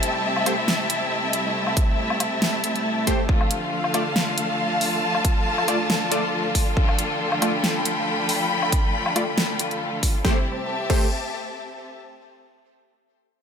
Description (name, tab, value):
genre	heavy wobble dubstep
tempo	138 BPM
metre	4/4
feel	swing 54% on 16ths, half-time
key	A minor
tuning	A4 = 441 Hz
part	rich studio string section	sustained chords	0.0-10.4 s	C3 to F4	-27 LUFS	left 1 dB	sidechain pumping
part	big-room dance drum kit	drums	0.0-11.0 s	crash cymbal, hi-hat, snare drum, woodblock	-25 LUFS	equal	studio reverb
part	warm symphonic string section	texture	0.0-11.9 s	C4 to B5	-26 LUFS	left 1 dB	sidechain pumping
part	supersaw stab	stabs	0.5-11.1 s	A3 to D5	-29 LUFS	equal	low-pass filter, ping-pong delay
part	electronic kick drum	drums	1.8-11.0 s	none	-22 LUFS	equal	studio reverb
room	moderate lush hall reverb, RT60 2.1 s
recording	none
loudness	-20 LUFS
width	side -7 dB against mid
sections	0.0-10.2 A section; 10.2-12.0 B section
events	none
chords	0.0 Am7; 3.3 Dm; 10.2 Am7